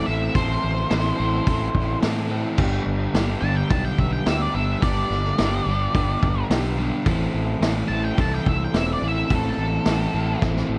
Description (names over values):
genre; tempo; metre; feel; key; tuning
garage rock duo or trio; 107 BPM; 4/4; straight; A minor; A4 = 438 Hz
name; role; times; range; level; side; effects
octave-fuzz lead guitar; melody; 0.0-10.4 s; A4 to A5; -30 LUFS; equal; distortion
crunchy overdriven guitar; riff; 0.0-10.8 s; G2 to A4; -28 LUFS; equal; none
fuzz fingered electric bass; bass; 0.1-10.8 s; E1 to A2; -27 LUFS; equal; overdrive, tube saturation
vintage drum kit; drums; 0.3-10.7 s; crash cymbal, hi-hat, kick drum, snare drum; -26 LUFS; equal; none
room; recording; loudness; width
little or no reverb; cassette tape; -22 LUFS; mono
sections
0.0-10.8 A section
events
drum fill 10.4-10.8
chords
0.0 Am; 2.6 G; 7.1 Am